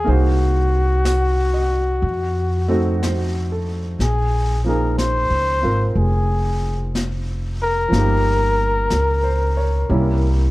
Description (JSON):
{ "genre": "jazz ballad", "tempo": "61 BPM", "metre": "4/4", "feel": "swing 66% on 8ths", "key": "unclear", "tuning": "A4 = 440 Hz", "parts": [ { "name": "warm flugelhorn", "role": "melody", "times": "0.0-10.5 s", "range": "Gb4 to C5", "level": "-22 LUFS", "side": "left 2 dB", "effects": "plate reverb" }, { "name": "clear baby grand piano", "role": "accompaniment", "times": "0.0-10.5 s", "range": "F3 to Gb5", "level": "-25 LUFS", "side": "right 2 dB", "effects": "none" }, { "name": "upright bass", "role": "bass", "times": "0.0-10.5 s", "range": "F1 to F2", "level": "-19 LUFS", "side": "equal", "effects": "none" }, { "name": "vintage brush drum kit", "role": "drums", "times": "0.1-10.5 s", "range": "brushed snare drum, hi-hat, snare drum", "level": "-31 LUFS", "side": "left 1 dB", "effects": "none" } ], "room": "little or no reverb", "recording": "dark, warm production", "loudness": "-17 LUFS", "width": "side -18 dB against mid", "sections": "0.0-10.5 A section", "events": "none", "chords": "0.1 Cm7b5; 2.0 F7b9; 4.0 Bb7(no3); 7.9 Gm7b5; 9.9 C7b9" }